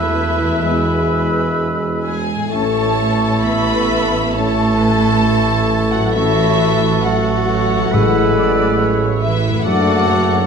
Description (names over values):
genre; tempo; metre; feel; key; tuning
classical, slow romantic movement for symphony orchestra; 63-70 BPM; 4/4; rubato; A major; A4 = 440 Hz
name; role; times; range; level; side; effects
warm studio violin section; melody; 0.0-10.5 s; E5 to B5; -23 LUFS; left 3 dB; none
bright oboe; second line; 0.0-10.5 s; A4 to B4; -26 LUFS; right 3 dB; none
bright silver concert flute; second line; 0.0-10.5 s; C#6 to E6; -25 LUFS; left 2 dB; none
warm clarinet; second line; 0.0-10.5 s; E4 to F#4; -26 LUFS; equal; none
warm symphonic violin section; second line; 0.0-10.5 s; E4 to B4; -26 LUFS; left 3 dB; none
mellow bassoon; accompaniment; 0.0-10.5 s; G#3 to A3; -23 LUFS; right 2 dB; none
warm studio viola section; accompaniment; 0.0-10.5 s; A4 to E5; -27 LUFS; right 1 dB; none
concert harp; arpeggios; 0.0-10.5 s; E2 to A4; -23 LUFS; left 12 dB; none
clear tuba; bass; 0.0-10.5 s; E1 to A1; -25 LUFS; right 4 dB; none
warm studio cello section; bass; 0.0-10.5 s; E3 to B3; -22 LUFS; right 2 dB; none
warm studio double bass section; bass; 0.0-10.5 s; A1 to F#2; -21 LUFS; right 5 dB; none
mellow French horn section; sustained chords; 0.7-10.5 s; G#3 to E4; -26 LUFS; left 4 dB; none
timpani; percussion; 7.9-9.2 s; A2; -21 LUFS; equal; none
room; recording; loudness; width
wet recital hall reverb, RT60 1.6 s; dark, warm production; -13 LUFS; side -6 dB against mid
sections
0.0-10.5 A section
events
none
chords
0.0 Esus4; 0.6 E; 2.5 A; 7.9 E/A; 9.6 D/F#